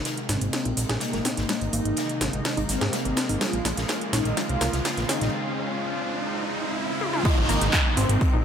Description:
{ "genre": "melodic techno", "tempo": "125 BPM", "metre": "4/4", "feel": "straight", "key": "unclear", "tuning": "A4 = 437 Hz", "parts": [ { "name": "mellow synth brass", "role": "melody", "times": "0.0-8.4 s", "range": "Bb3 to F4", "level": "-30 LUFS", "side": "equal", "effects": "chorus, sidechain pumping, tape echo" }, { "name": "lush unison pad", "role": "sustained chords", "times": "0.0-8.4 s", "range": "C3 to F4", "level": "-31 LUFS", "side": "equal", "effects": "chorus, sidechain pumping" }, { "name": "riser and downlifter", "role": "sound effects", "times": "2.4-8.4 s", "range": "none", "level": "-31 LUFS", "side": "equal", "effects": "none" }, { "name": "house drum kit", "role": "drums", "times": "0.1-8.3 s", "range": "crash cymbal, handclaps, hi-hat, snare drum, toms", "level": "-28 LUFS", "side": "equal", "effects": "high-pass filter on snare, sidechain pumping on hats, high-pass filter on hats, sidechain pumping on toms, high-pass filter on toms, sidechain pumping on cymbals, high-pass filter on cymbals" }, { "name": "oversized low-tuned drum kit", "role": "drums", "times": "0.1-8.3 s", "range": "hi-hat, snare drum", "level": "-35 LUFS", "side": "left 2 dB", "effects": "high-pass filter on hats, high-pass filter on snare, high-pass filter on room" }, { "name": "tight sequenced synth", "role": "arpeggios", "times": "0.3-8.4 s", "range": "Ab3 to Ab4", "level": "-34 LUFS", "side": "equal", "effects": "chorus, sidechain pumping, tape echo" }, { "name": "fat analog bass", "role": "bass", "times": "0.3-8.4 s", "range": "Ab1 to Ab2", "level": "-27 LUFS", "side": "equal", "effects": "sidechain pumping" }, { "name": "electronic kick drum", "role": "drums", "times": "7.3-8.3 s", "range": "none", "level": "-22 LUFS", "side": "equal", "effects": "none" } ], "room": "moderate recital hall reverb, RT60 1.5 s, digital ambience", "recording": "none", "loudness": "-22 LUFS", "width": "side -8 dB against mid", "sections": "0.0-7.3 A section; 7.3-8.4 B section", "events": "build-up 0.0-7.3; drum fill 0.0-5.3, 7.0; filter sweep on synth arpeggio sound 0.0-7.3; filter sweep on analog polysynth 0.0-7.3; riser 2.4-7.3; break 5.3-7.3; drop 7.3-8.4", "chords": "0.0 Abadd9; 3.4 Bbm7; 7.3 Abadd9" }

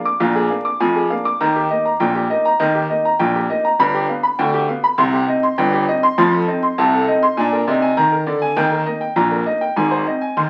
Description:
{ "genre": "ragtime piano", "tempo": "100 BPM", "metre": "2/4", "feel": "straight", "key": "Eb major", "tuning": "A4 = 440 Hz", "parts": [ { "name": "clear upright piano", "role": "solo", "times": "0.0-10.5 s", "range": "G1 to D6", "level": "-17 LUFS", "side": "equal", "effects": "none" } ], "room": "wet studio reverb, RT60 0.7 s", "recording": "very old 78 rpm record, vinyl crackle", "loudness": "-17 LUFS", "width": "mono", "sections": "0.0-10.5 A section", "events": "none", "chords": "0.0 Bb7; 1.4 Eb; 3.8 G7; 5.0 Cm; 6.2 F7; 7.4 Bb7; 8.6 Eb; 9.8 Ab" }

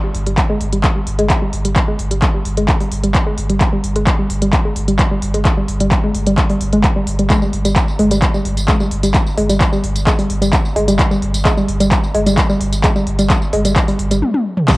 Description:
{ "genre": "driving peak-time techno", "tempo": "130 BPM", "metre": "4/4", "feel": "straight", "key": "unclear", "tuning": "A4 = 445 Hz", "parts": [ { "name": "woody wave-folded pluck", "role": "riff", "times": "0.0-14.8 s", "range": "G3 to Ab3", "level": "-18 LUFS", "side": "equal", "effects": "chorus, tube saturation, sidechain pumping, cassette tape, analog delay" }, { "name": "warm sub bass", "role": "bass", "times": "0.1-14.2 s", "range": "G1", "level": "-19 LUFS", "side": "equal", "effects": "sidechain pumping, low-pass filter" }, { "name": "techno drum kit", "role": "drums", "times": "0.1-14.8 s", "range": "crash cymbal, handclaps, hi-hat, tambourine, toms", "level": "-20 LUFS", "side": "equal", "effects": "overdrive, cassette tape" }, { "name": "electronic kick drum", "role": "drums", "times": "0.4-14.8 s", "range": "none", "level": "-15 LUFS", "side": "equal", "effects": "overdrive, cassette tape" }, { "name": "impact", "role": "sound effects", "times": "14.7-14.8 s", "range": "none", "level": "-23 LUFS", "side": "equal", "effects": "none" } ], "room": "light reverb", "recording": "home recording on cassette", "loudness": "-13 LUFS", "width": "side -20 dB against mid", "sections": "0.0-14.7 A section", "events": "drum fill 14.2-14.7", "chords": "none" }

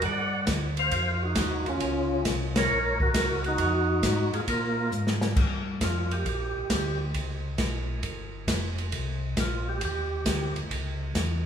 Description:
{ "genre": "soul jazz organ trio", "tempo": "135 BPM", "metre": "4/4", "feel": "swing 68% on 8ths", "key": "unclear", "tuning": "A4 = 440 Hz", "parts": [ { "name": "percussive tonewheel organ", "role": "melody", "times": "0.0-10.5 s", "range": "Db4 to Gb5", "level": "-28 LUFS", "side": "equal", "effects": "slow rotary speaker, chorus vibrato" }, { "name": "mellow tonewheel organ", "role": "bass", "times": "0.0-11.5 s", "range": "E#1 to Bb2", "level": "-30 LUFS", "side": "equal", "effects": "chorus vibrato" }, { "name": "open jazz drum kit", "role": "drums", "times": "0.0-11.3 s", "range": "crash cymbal, hi-hat, kick drum, ride cymbal, snare drum", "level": "-29 LUFS", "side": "equal", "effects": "none" } ], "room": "moderate lush hall reverb, RT60 1.9 s, small room ambience", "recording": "rough home demo mix, studio reverb", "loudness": "-25 LUFS", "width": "side -8 dB against mid", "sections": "0.0-5.4 A section; 5.4-11.5 B section", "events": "band accent 2.5; drum fill 4.9-5.4; tonewheel organ solo 5.4-11.5", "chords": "0.0 Csus2; 0.9 F5; 1.8 Bbmadd9; 3.6 Fm7; 4.5 Bb5; 5.4 Gm7; 7.1 C#7#11; 8.9 Cm9; 10.7 C#m" }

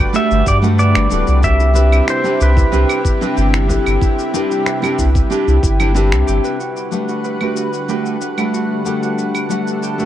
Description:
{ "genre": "sunset chillout", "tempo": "93 BPM", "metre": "4/4", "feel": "straight", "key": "G major", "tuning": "A4 = 439 Hz", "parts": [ { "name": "pedal steel guitar", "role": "melody", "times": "0.0-5.9 s", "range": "B4 to G5", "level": "-20 LUFS", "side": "equal", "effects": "dub echo" }, { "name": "lush unison pad", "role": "sustained chords", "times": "0.0-10.1 s", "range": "C3 to F#5", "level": "-24 LUFS", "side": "equal", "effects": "chorus" }, { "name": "concert harp", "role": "arpeggios", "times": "0.0-10.1 s", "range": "E4 to B4", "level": "-24 LUFS", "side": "right 2 dB", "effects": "low-pass filter, analog delay" }, { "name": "warm sub bass", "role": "bass", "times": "0.0-6.4 s", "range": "D1 to G2", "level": "-14 LUFS", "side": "equal", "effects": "none" }, { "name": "nylon-string guitar", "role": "accompaniment", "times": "0.1-10.1 s", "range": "G3 to F#5", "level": "-19 LUFS", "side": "moving between left 6 dB and right 6 dB", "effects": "auto-pan, vintage 12-bit sampler grit, analog delay" }, { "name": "electronic cabasa, finger snaps and claves", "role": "drums", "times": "0.1-10.1 s", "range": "none", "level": "-24 LUFS", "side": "right 1 dB", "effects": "none" }, { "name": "electronic kick drum", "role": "drums", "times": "0.5-5.8 s", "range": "none", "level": "-17 LUFS", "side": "equal", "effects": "none" } ], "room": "light reverb, digital ambience", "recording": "echo-heavy mix", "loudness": "-13 LUFS", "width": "side -12 dB against mid", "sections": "0.0-6.6 A section; 6.6-10.1 B section", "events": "none", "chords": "0.0 Gmaj7; 1.4 Cmaj7; 6.6 Gmaj7" }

